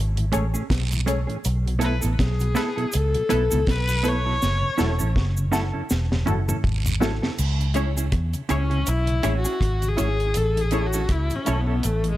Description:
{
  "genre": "roots reggae",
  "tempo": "81 BPM",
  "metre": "4/4",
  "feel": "swing 57% on 16ths",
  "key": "C# minor",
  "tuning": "A4 = 440 Hz",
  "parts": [
    { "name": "vintage muted fingered electric bass", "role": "bass", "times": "0.0-12.2 s", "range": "E1 to E2", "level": "-23 LUFS", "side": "equal", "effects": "none" },
    { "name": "mellow tonewheel organ", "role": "accompaniment", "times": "0.2-12.1 s", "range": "F#2 to E4", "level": "-33 LUFS", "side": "left 2 dB", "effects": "chorus vibrato" },
    { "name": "deep reggae drum kit", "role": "drums", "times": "0.2-12.2 s", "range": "crash cymbal, hi-hat, kick drum, rim click, snare drum, toms", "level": "-26 LUFS", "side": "equal", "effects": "none" },
    { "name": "mellow electric guitar", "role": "accompaniment", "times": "0.3-11.8 s", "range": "A3 to A4", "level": "-30 LUFS", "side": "right 5 dB", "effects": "tube saturation, tape echo" },
    { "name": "filtered dub chord stab", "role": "stabs", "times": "0.3-11.7 s", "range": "E4 to C#5", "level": "-31 LUFS", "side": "left 3 dB", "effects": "phaser" },
    { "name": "cabasa and guiro", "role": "percussion", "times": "0.3-12.0 s", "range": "none", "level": "-34 LUFS", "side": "right 2 dB", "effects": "none" },
    { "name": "warm viola", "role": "melody", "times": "1.8-12.2 s", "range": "G#3 to C#5", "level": "-26 LUFS", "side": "left 2 dB", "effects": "tape echo" }
  ],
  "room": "studio ambience",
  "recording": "none",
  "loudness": "-20 LUFS",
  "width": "side -15 dB against mid",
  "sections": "0.0-7.4 A section; 7.4-12.2 B section",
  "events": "drum fill 4.4-7.4; viola solo 7.4-12.2",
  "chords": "0.0 Amaj7; 1.4 B7sus4; 4.4 F#m7; 7.4 C#m; 10.4 A",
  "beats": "0.71 | 1.45 2.19 2.93 3.68 | 4.42 5.16 5.90 6.65 | 7.39 8.13 8.87 9.61 | 10.35 11.10 11.84"
}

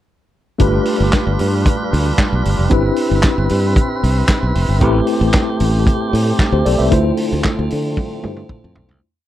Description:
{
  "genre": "disco",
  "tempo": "114 BPM",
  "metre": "4/4",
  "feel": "straight",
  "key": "unclear",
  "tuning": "A4 = 440 Hz",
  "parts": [
    { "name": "tine electric piano", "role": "accompaniment", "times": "0.6-9.1 s", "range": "A3 to E5", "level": "-19 LUFS", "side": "left 2 dB", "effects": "overdrive, fast stereo tremolo" },
    { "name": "tonewheel organ", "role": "sustained chords", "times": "0.6-9.0 s", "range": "D3 to B4", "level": "-23 LUFS", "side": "right 1 dB", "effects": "overdrive, lush chorus" },
    { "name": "modern bright fingered electric bass", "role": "bass", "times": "0.6-9.0 s", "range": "F1 to D3", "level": "-16 LUFS", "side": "equal", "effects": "none" },
    { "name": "warm soul drum kit", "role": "drums", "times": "0.6-9.0 s", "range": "handclaps, hi-hat, kick drum, snare drum, toms", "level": "-18 LUFS", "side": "equal", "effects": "none" }
  ],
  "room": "light reverb, studio ambience",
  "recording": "dark, warm production",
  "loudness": "-13 LUFS",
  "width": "side -13 dB against mid",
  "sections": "0.6-9.0 verse",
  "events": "fade-out 6.9-9.0; drum fill 8.0-9.0",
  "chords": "0.6 G7; 2.7 Cmaj9/G; 4.8 Am7; 6.9 Dm7",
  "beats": "| 0.59 1.12 1.65 2.18 | 2.71 3.24 3.76 4.29 | 4.82 5.34 5.87 6.39 | 6.92 7.45 7.97 8.50"
}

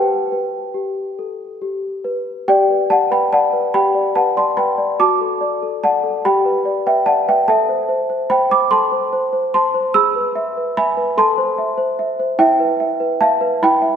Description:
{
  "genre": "classical, lullaby for celesta",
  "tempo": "48 BPM (dotted quarters)",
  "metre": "6/8",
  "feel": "straight",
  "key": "G major",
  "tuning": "A4 = 440 Hz",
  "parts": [
    { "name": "worn celesta", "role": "solo", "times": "0.0-14.0 s", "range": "E4 to E6", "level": "-15 LUFS", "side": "equal", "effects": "none" }
  ],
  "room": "wet concert hall reverb, RT60 2.2 s",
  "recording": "recorded in a church or concert hall",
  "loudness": "-15 LUFS",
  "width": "side -8 dB against mid",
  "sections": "0.0-2.5 A section; 2.5-14.0 B section",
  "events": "none",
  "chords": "0.0 G; 5.0 D/F#; 6.2 G; 7.5 Am; 9.9 E/G#; 11.2 Am; 12.4 Em",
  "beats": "1.19 | 2.48 3.75 | 5.00 6.24 | 7.48 8.71 | 9.95 11.17 | 12.40 13.63"
}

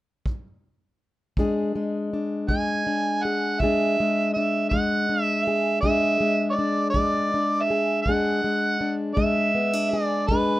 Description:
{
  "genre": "acoustic country blues, solo or duo",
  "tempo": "54 BPM (dotted quarters)",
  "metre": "12/8",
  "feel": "straight",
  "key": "E mixolydian",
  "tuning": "A4 = 440 Hz",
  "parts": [
    { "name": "kick drum", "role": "drums", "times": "0.3-10.5 s", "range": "none", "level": "-27 LUFS", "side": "equal", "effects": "none" },
    { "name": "fingerpicked plugged-in steel-string acoustic guitar", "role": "accompaniment", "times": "1.4-10.6 s", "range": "E2 to G#4", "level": "-24 LUFS", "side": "left 2 dB", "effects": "none" },
    { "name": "overdriven harmonica", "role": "melody", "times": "2.5-10.6 s", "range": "B4 to G#5", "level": "-23 LUFS", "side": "right 2 dB", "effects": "none" }
  ],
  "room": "little or no reverb",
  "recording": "rough home demo mix",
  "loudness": "-21 LUFS",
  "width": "side -16 dB against mid",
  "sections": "0.0-1.4 A section; 1.4-10.6 B section",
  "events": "none",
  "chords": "0.0 N.C.; 1.4 E7",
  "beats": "0.26 | 1.37 2.49 3.60 4.71 | 5.83 6.94 8.06 9.17 | 10.29"
}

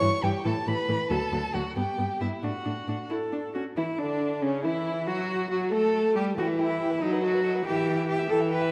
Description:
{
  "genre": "quick classical-period movement for string quartet",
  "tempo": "92 BPM (dotted quarters)",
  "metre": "6/8",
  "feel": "straight",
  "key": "D major",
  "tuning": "A4 = 440 Hz",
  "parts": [
    { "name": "warm violin", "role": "melody", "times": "0.0-8.7 s", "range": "C#4 to C#6", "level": "-38 LUFS", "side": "equal", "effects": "none" },
    { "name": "rich violin", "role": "second line", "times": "0.0-8.7 s", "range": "C#4 to G5", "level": "-36 LUFS", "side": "equal", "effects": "none" },
    { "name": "rich viola", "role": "accompaniment", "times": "0.0-8.7 s", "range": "C#3 to E4", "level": "-32 LUFS", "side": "equal", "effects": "none" },
    { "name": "clear cello", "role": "bass", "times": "0.0-8.7 s", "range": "D2 to B4", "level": "-31 LUFS", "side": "equal", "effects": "none" }
  ],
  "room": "wet scoring stage reverb, RT60 2.0 s",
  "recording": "dark, warm production",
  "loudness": "-28 LUFS",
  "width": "mono",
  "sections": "0.0-3.8 A section; 3.8-8.7 B section",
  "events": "none",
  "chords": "0.5 A5; 1.1 D; 1.8 G; 2.4 D; 3.1 N.C.; 3.8 Dsus2; 4.4 C#m; 5.1 F#m; 6.4 Em; 7.0 B7/F#; 7.7 Em",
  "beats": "0.45 | 1.10 1.76 | 2.43 3.10 | 3.78 4.43 | 5.08 5.72 | 6.37 7.02 | 7.66 8.30"
}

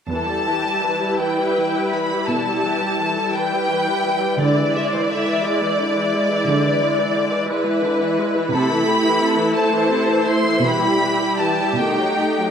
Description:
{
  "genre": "classical, slow romantic movement for symphony orchestra",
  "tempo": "50-60 BPM (dotted quarters)",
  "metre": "12/8",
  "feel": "rubato",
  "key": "E minor",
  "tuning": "A4 = 439 Hz",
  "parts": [
    { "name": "rich studio violin section", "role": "melody", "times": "0.1-12.5 s", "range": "C5 to C6", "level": "-22 LUFS", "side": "left 2 dB", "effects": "none" },
    { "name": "rich studio violin section", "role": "second line", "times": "0.1-12.5 s", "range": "G4 to D5", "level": "-24 LUFS", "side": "left 1 dB", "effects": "none" },
    { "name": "rich studio viola section", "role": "accompaniment", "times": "0.1-12.5 s", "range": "C3 to E4", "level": "-23 LUFS", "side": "equal", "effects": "none" },
    { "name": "dark French horn section", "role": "sustained chords", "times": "0.1-12.5 s", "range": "G3 to E4", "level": "-23 LUFS", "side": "equal", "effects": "none" },
    { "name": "rich studio cello section", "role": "bass", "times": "0.1-12.5 s", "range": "E2 to D3", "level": "-24 LUFS", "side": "right 3 dB", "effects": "none" }
  ],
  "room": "wet scoring stage reverb, RT60 1.8 s",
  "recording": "none",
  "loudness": "-17 LUFS",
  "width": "side -7 dB against mid",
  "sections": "0.1-12.5 A section",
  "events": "none",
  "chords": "0.1 Em; 4.4 E7/D; 8.5 Am/C; 10.6 Em/B; 11.8 B7",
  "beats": "| 0.11 1.21 2.30 3.35 | 4.41 5.45 6.48 7.50 | 8.53 9.57 10.65 11.79"
}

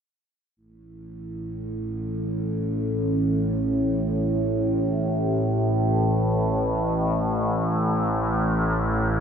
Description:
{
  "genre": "ambient",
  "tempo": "free time",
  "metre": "none",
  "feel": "none",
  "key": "unclear",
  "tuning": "A4 = 440 Hz",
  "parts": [
    { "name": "overtone-sweeping drone", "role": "solo", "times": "1.1-9.2 s", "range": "A1 to A2", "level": "-22 LUFS", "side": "equal", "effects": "chorus, built-in reverb, diffuse ambient delay" }
  ],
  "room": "wet cathedral reverb, RT60 5.4 s",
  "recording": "none",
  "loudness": "-22 LUFS",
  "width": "side -7 dB against mid",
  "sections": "0.6-9.2 A section",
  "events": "none",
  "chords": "none",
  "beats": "free time"
}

